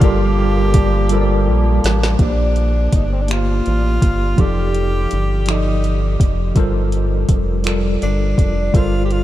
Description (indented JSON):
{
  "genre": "slow six-eight R&B",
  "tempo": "55 BPM (dotted quarters)",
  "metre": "6/8",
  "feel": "straight",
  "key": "G minor",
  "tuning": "A4 = 440 Hz",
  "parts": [
    { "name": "breathy tenor saxophone", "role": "melody", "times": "0.0-9.2 s", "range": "C4 to G4", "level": "-24 LUFS", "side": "right 1 dB", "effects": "tape echo" },
    { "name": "tine electric piano", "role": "accompaniment", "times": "0.0-9.2 s", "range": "F3 to F5", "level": "-21 LUFS", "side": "equal", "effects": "overdrive, fast stereo tremolo" },
    { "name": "hand-pumped harmonium", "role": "sustained chords", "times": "0.0-2.2 s", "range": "F3 to Bb3", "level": "-28 LUFS", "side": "right 1 dB", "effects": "none" },
    { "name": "rubbery square bass", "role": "bass", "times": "0.0-9.2 s", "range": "F1 to Bb1", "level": "-18 LUFS", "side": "equal", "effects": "none" },
    { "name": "smooth R&B drum kit", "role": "drums", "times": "0.0-9.2 s", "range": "finger snaps, hi-hat, kick drum, snare drum", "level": "-16 LUFS", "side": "equal", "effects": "none" }
  ],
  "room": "light reverb",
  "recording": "none",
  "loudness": "-14 LUFS",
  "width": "side -14 dB against mid",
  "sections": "0.0-2.2 A section; 2.2-9.2 B section",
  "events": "drum fill 1.1-2.2",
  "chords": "0.0 Gm11; 4.4 F13; 6.6 Gm11"
}